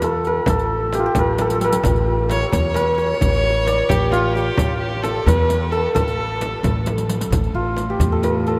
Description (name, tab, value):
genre	Persian modal ensemble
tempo	88 BPM (dotted quarters)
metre	6/8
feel	straight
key	A dastgah homayun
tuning	A4 = 442 Hz
part	santur	melody	0.0-8.6 s	F4 to D5	-23 LUFS	equal	none
part	upright bass	bass	0.0-8.6 s	A1 to E2	-25 LUFS	equal	none
part	frame drum	percussion	0.0-8.3 s	none	-30 LUFS	equal	none
part	riq	percussion	0.0-8.5 s	none	-33 LUFS	equal	none
part	tombak	percussion	0.0-8.3 s	none	-29 LUFS	equal	none
part	warm violin	second line	2.3-6.8 s	F4 to C#5	-27 LUFS	equal	none
part	rich cello	drone	7.3-8.6 s	A2	-28 LUFS	equal	none
room	wet huge ambient reverb, RT60 7.4 s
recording	in a vast, echoing space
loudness	-19 LUFS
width	mono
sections	0.0-7.3 A section; 7.3-8.6 B section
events	drum fill 1.4-1.8, 6.9-7.3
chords	none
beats	| 0.47 1.16 | 1.84 2.53 | 3.21 3.90 | 4.58 5.26 | 5.95 6.63 | 7.32 8.00